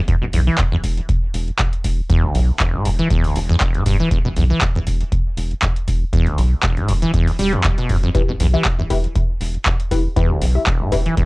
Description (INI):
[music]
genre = acid house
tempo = 119 BPM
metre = 4/4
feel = swing 54% on 16ths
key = E phrygian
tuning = A4 = 440 Hz
[part]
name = acid bass, saw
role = riff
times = 0.1-11.3 s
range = E1 to G3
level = -19 LUFS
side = equal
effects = wide subtle chorus, sidechain pumping, cassette tape, analog delay
[part]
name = electro analog drum machine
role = drums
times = 0.1-11.3 s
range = handclaps, hi-hat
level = -24 LUFS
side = equal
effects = cassette tape
[part]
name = electronic kick drum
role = drums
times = 0.1-11.3 s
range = none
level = -19 LUFS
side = equal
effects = cassette tape
[part]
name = round analog bass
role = bass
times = 0.2-11.1 s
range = E1 to B1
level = -20 LUFS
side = equal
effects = sidechain pumping
[part]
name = filtered dub chord stab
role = stabs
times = 8.1-11.0 s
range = E4 to E5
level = -24 LUFS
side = left 5 dB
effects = phaser, cassette tape, analog delay
[sound]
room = little or no reverb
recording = home recording on cassette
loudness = -15 LUFS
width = side -24 dB against mid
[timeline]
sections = 0.0-11.3 A section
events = none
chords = 0.0 Em